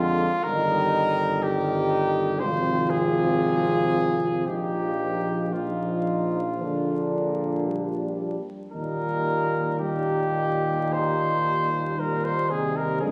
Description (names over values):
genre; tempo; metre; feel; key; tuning
classical, hymn-like piece for brass band; 52-62 BPM; 4/4; rubato; Eb major; A4 = 439 Hz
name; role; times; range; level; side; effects
warm cornet; melody; 0.0-13.1 s; F4 to C5; -28 LUFS; equal; none
warm French horn section; second line; 0.0-13.1 s; D4 to F4; -33 LUFS; equal; none
clear trombone; accompaniment; 0.0-13.1 s; Bb2 to Eb3; -35 LUFS; equal; none
warm euphonium; accompaniment; 0.0-13.1 s; D3 to Ab3; -33 LUFS; equal; none
mellow tuba; bass; 0.0-13.1 s; G1 to F2; -31 LUFS; equal; none
room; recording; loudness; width
moderate concert hall reverb, RT60 2.1 s; recorded on a phone in the room, club reverb, vinyl crackle; -25 LUFS; mono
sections
0.0-13.1 A section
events
none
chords
0.4 Eb/G; 2.4 Fm/Ab; 4.5 Bbsus4; 6.6 Bb; 8.7 Eb